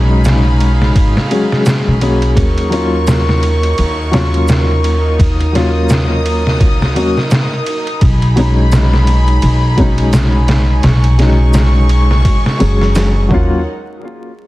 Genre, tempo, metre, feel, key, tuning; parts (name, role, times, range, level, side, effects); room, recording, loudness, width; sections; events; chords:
trip hop; 85 BPM; 4/4; swing 58% on 16ths; A4 = 440 Hz
felt-muted upright piano; accompaniment; 0.0-13.6 s; F#3 to G#4; -17 LUFS; left 2 dB; tremolo, tape echo
dark studio string section; sustained chords; 0.0-13.6 s; D#4 to Eb6; -20 LUFS; equal; vintage 12-bit sampler grit
upright bass; bass; 0.0-13.6 s; F#1 to Eb2; -12 LUFS; equal
maracas; percussion; 0.2-13.1 s; -33 LUFS; equal
trip hop sampler-style drum kit; drums; 0.3-13.5 s; kick drum, ride cymbal, snare drum; -15 LUFS; equal
small room ambience; dense, heavily limited modern master, vinyl crackle; -10 LUFS; side -18 dB against mid
0.0-13.7 A section
0.0 B6; 2.4 Ebm7; 8.0 B6; 13.3 Ebm7; 13.7 N.C.